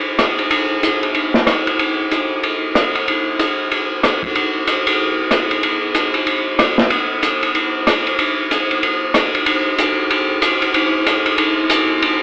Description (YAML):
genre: jazz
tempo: 188 BPM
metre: 4/4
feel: swing 61% on 8ths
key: none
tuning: none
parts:
  - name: vintage drum kit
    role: drums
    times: 0.2-12.1 s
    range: hi-hat, kick drum, ride cymbal, rim click, snare drum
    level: -17 LUFS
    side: equal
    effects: none
room: light reverb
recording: AM radio sound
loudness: -17 LUFS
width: mono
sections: 0.0-9.5 A section; 9.5-12.2 B section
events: none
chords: none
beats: 0.19 | 0.51 0.83 1.15 1.47 | 1.79 2.11 2.43 2.75 | 3.07 3.39 3.71 4.03 | 4.35 4.67 4.99 5.31 | 5.63 5.95 6.27 6.59 | 6.91 7.23 7.55 7.87 | 8.19 8.51 8.83 9.15 | 9.47 9.79 10.10 10.42 | 10.74 11.06 11.38 11.70 | 12.02